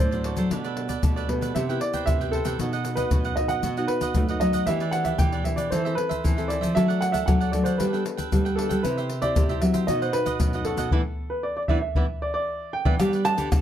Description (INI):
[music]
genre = samba and choro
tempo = 115 BPM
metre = 4/4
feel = straight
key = E minor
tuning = A4 = 438 Hz
[part]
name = warm baby grand piano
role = melody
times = 0.0-13.6 s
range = A4 to A5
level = -28 LUFS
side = right 2 dB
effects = none
[part]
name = cavaquinho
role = accompaniment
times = 0.0-13.5 s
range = D4 to G5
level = -33 LUFS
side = right 8 dB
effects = none
[part]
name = nylon-string guitar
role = accompaniment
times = 0.0-13.6 s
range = F#2 to A4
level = -32 LUFS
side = left 3 dB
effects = none
[part]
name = nylon-string guitar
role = bass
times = 0.0-13.6 s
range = A2 to A3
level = -27 LUFS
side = equal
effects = none
[part]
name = tube shaker, pandeiro, surdo and tamborim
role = percussion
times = 0.1-13.6 s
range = none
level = -26 LUFS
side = left 1 dB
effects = none
[sound]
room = light reverb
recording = close, detailed microphones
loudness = -22 LUFS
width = side -10 dB against mid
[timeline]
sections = 0.0-13.0 A section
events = band accent 10.9-13.0; drum fill 12.5-13.0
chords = 0.0 D7/A; 0.5 Gadd9/B; 1.6 Cmaj7; 2.6 B; 4.7 Em7; 5.7 Am/E; 6.8 D/F#; 7.8 Gadd9; 8.8 C; 9.9 B; 10.9 E5; 13.0 G